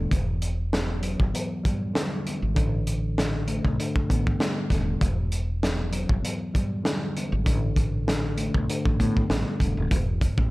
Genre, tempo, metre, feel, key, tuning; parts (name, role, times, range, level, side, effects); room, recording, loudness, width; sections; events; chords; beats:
hip hop, boom-bap hip-hop; 98 BPM; 4/4; swing 55% on 16ths; E minor; A4 = 440 Hz
mellow tine electric piano; accompaniment; 0.0-10.5 s; E2 to B3; -30 LUFS; left 1 dB; cassette tape, high-pass filter, low-pass filter
woody fretless electric bass; bass; 0.0-10.5 s; D#1 to A2; -27 LUFS; equal; lush chorus
crunchy breakbeat drum kit; drums; 0.1-10.5 s; hi-hat, kick drum, snare drum; -26 LUFS; equal
small room ambience; -23 LUFS; side -20 dB against mid
0.0-9.9 A section
0.1 Em9; 2.6 A9sus4; 5.0 Em9; 7.5 A9sus4; 9.9 Esus4
| 0.11 0.73 1.34 1.95 | 2.56 3.17 3.79 4.40 | 5.01 5.62 6.24 6.85 | 7.46 8.07 8.69 9.30 | 9.91